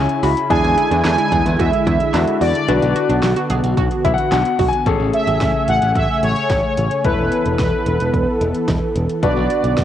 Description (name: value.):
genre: synth-pop.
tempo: 110 BPM.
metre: 4/4.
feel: straight.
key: unclear.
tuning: A4 = 440 Hz.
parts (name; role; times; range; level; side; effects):
clear baby grand piano; accompaniment; 0.0-9.8 s; C#4 to B5; -22 LUFS; left 8 dB; cassette tape.
warm analog pad; sustained chords; 0.0-9.8 s; C#3 to G#5; -21 LUFS; equal; chorus, cassette tape.
analog pluck; arpeggios; 0.0-4.8 s; C#4 to G#4; -25 LUFS; right 8 dB; chorus, cassette tape, tape echo.
modern bright picked electric bass; bass; 0.0-9.8 s; E1 to E2; -20 LUFS; equal; none.
deep house drum kit; drums; 0.1-9.8 s; handclaps, hi-hat, kick drum, snare drum; -23 LUFS; equal; overdrive.
analog synth brass; melody; 0.5-9.8 s; B4 to G#5; -20 LUFS; right 1 dB; chorus, cassette tape, tape echo.
room: moderate spring reverb, RT60 2.6 s.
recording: home recording on cassette.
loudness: -14 LUFS.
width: side -10 dB against mid.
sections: 0.0-4.9 A section; 4.9-9.8 B section.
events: grand piano fill 0.0-0.5, 3.8-4.9.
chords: 0.0 C#m7; 0.5 E7; 2.7 Bm; 4.9 Amaj7; 7.0 Esus4; 9.2 Bm.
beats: | 0.50 1.05 1.59 2.14 | 2.68 3.23 3.77 4.32 | 4.87 5.41 5.96 6.50 | 7.05 7.59 8.14 8.68 | 9.23 9.77.